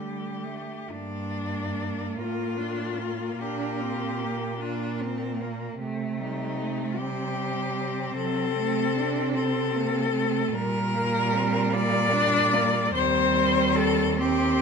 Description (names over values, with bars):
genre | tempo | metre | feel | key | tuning
classical, lyrical piece for cello ensemble | 50 BPM (dotted quarters) | 6/8 | rubato | G minor | A4 = 440 Hz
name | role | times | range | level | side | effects
rich cello | melody | 0.0-14.6 s | D4 to D5 | -27 LUFS | left 4 dB | none
rich cello | second line | 0.0-14.6 s | F#3 to D4 | -30 LUFS | right 8 dB | none
clear cello | accompaniment | 0.0-14.6 s | G3 to D4 | -31 LUFS | left 3 dB | none
warm cello | bass | 0.0-14.6 s | Eb2 to D3 | -32 LUFS | right 3 dB | none
room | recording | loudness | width
moderate scoring stage reverb, RT60 1.9 s | close, detailed microphones | -24 LUFS | side -5 dB against mid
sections
0.9-14.6 A section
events
none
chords
0.0 D5; 0.9 Gm; 3.4 Gm/Bb; 5.8 Am7b5/C; 8.2 D7(no3)/C (rootless); 10.5 Gm/Bb; 13.0 Cm/Eb